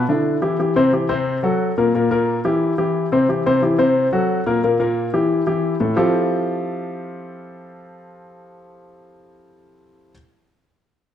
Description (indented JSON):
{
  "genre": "jazz",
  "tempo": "179 BPM",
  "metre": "4/4",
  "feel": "straight",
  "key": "F major",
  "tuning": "A4 = 442 Hz",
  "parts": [
    { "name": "warm grand piano", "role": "accompaniment", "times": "0.0-10.1 s", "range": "A2 to C5", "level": "-17 LUFS", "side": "left 1 dB", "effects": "none" }
  ],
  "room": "moderate large studio reverb, RT60 1.2 s",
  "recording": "dark, warm production",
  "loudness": "-16 LUFS",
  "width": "side -10 dB against mid",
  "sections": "0.6-6.0 A section; 6.0-8.7 B section",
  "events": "none",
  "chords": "0.0 E5; 0.6 C; 1.3 F#dim; 1.9 Gm; 2.6 C; 4.0 F#dim; 4.6 Gm; 5.3 Emadd11; 6.0 Fmaj9"
}